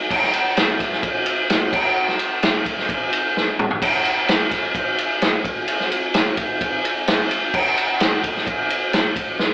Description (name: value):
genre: rock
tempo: 129 BPM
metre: 4/4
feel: straight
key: none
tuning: none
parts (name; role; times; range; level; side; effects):
- vintage drum kit; drums; 0.1-9.5 s; crash cymbal, kick drum, ride cymbal, snare drum, toms; -17 LUFS; equal; none
room: light reverb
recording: band playing live in one room, AM radio sound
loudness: -17 LUFS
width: side -22 dB against mid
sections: 0.0-9.5 A section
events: drum fill 3.4-3.8, 9.4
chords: none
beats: | 0.10 0.57 1.03 1.50 | 1.96 2.43 2.89 3.35 | 3.82 4.28 4.75 5.21 | 5.68 6.14 6.60 7.07 | 7.53 8.00 8.46 8.92 | 9.39